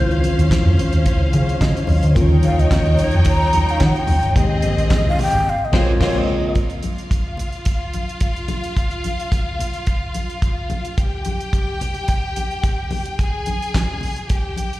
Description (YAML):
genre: disco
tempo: 109 BPM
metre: 4/4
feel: straight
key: Bb dorian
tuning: A4 = 440 Hz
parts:
  - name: breathy long shakuhachi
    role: melody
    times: 0.0-6.6 s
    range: C5 to Bb5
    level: -22 LUFS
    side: equal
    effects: plate reverb, slapback echo
  - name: clear studio string section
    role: second line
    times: 0.0-14.8 s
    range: Ab3 to Ab5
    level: -26 LUFS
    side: left 1 dB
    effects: slapback echo
  - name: tine electric piano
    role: accompaniment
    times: 0.0-6.6 s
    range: Db3 to F5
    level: -22 LUFS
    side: left 2 dB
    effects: ensemble chorus, plate reverb, slapback echo
  - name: hollow-body short-scale picked electric bass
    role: bass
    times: 0.0-6.2 s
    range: G1 to Eb3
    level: -17 LUFS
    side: equal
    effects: none
  - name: damped 70s drum kit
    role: drums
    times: 0.1-14.8 s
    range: crash cymbal, handclaps, hi-hat, kick drum, snare drum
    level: -20 LUFS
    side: equal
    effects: none
  - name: congas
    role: percussion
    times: 0.2-14.7 s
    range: none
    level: -29 LUFS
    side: left 2 dB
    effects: slapback echo
room: light reverb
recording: live gig heard through the venue's PA, recital hall reverb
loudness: -16 LUFS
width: side -16 dB against mid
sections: 0.0-6.6 A section; 6.6-14.8 B section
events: shakuhachi solo 0.0-6.6; tine electric piano fill 1.1-2.2; band accent 5.5-6.6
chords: 0.0 Dbmaj7; 2.2 Eb7; 4.4 Abmaj7; 5.5 Bbm9; 6.6 N.C.